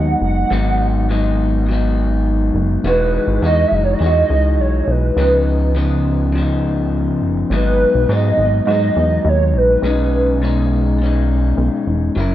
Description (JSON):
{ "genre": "indie pop", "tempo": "103 BPM", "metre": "4/4", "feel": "straight", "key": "B major", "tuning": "A4 = 439 Hz", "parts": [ { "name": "hollow clarinet-like synth lead", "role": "melody", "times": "0.0-10.4 s", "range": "B4 to F#5", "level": "-18 LUFS", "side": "right 2 dB", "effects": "ensemble chorus, tape echo" }, { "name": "electric guitar through a small old amp", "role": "accompaniment", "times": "0.0-12.3 s", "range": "G#2 to A#4", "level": "-19 LUFS", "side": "left 3 dB", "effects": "wide subtle chorus, warbly pitch drift" }, { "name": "chorused synth bass", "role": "bass", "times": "0.0-12.3 s", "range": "E1 to G#2", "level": "-17 LUFS", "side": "equal", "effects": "none" } ], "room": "little or no reverb", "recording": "nothing above 7.8 kHz", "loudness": "-14 LUFS", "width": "side -13 dB against mid", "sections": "0.0-12.2 A section", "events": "none", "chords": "0.0 G#m7; 2.8 Emaj9; 5.2 C#9; 7.5 G#m7; 9.8 B69" }